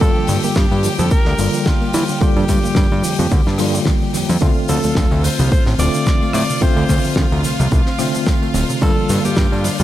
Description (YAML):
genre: nu-disco, nu disco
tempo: 109 BPM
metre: 4/4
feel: swing 55% on 16ths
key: unclear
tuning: A4 = 440 Hz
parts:
  - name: warm tenor saxophone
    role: melody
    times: 0.0-9.8 s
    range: D4 to D5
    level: -25 LUFS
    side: equal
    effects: vintage 12-bit sampler grit, dub echo
  - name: tine electric piano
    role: accompaniment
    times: 0.0-9.8 s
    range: D3 to F4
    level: -21 LUFS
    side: equal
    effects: medium stereo tremolo, sidechain pumping, tape echo
  - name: clear studio violin section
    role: sustained chords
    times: 0.0-9.8 s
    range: F4 to G5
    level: -29 LUFS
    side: left 1 dB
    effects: sidechain pumping
  - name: soft round pluck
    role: arpeggios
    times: 0.0-9.8 s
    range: C3 to G4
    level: -27 LUFS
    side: right 3 dB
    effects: none
  - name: fat analog bass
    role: bass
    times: 0.0-9.8 s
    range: D1 to E3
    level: -19 LUFS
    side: equal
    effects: none
  - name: damped 70s drum kit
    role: drums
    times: 0.0-9.8 s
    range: hi-hat, rim click, shaker, snare drum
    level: -24 LUFS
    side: left 2 dB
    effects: small room ambience, tape echo
  - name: electronic kick drum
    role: drums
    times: 0.0-9.5 s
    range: none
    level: -16 LUFS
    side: equal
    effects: small room ambience
  - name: tambourine and congas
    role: percussion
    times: 0.0-9.8 s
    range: none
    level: -29 LUFS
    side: left 2 dB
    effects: none
room: small room ambience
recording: echo-heavy mix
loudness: -14 LUFS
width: side -13 dB against mid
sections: 0.0-9.8 A section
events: none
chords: 0.0 Gm7; 4.4 Dm7; 8.8 Gm7